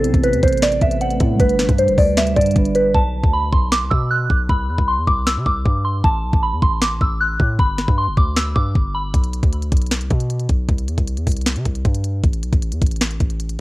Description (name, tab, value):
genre	hip hop, trap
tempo	155 BPM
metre	4/4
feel	half-time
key	B phrygian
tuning	A4 = 441 Hz
part	soft synth bell	melody	0.0-9.1 s	A4 to F#6	-19 LUFS	equal	chorus, phaser, low-pass filter, cassette tape, analog delay
part	mellow tine electric piano	accompaniment	0.0-3.0 s	G3 to B4	-23 LUFS	right 3 dB	phaser, low-pass filter
part	glassy FM pad	sustained chords	0.0-2.9 s	C3 to B4	-26 LUFS	right 1 dB	ensemble chorus, built-in reverb, phaser
part	distorted 808-style bass	bass	0.0-13.6 s	F#1 to C3	-22 LUFS	equal	distortion
part	trap drum kit	drums	0.0-13.6 s	hi-hat, kick drum, snare drum	-18 LUFS	equal	cassette tape
room	digital ambience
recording	home recording on cassette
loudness	-15 LUFS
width	side -18 dB against mid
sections	0.0-2.9 A section; 2.9-13.6 B section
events	break 2.9-9.1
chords	0.0 Amadd9; 1.4 G; 2.9 Bm7; 4.5 C5; 6.0 N.C.; 7.6 G; 9.1 Bm; 10.7 C5; 12.2 N.C.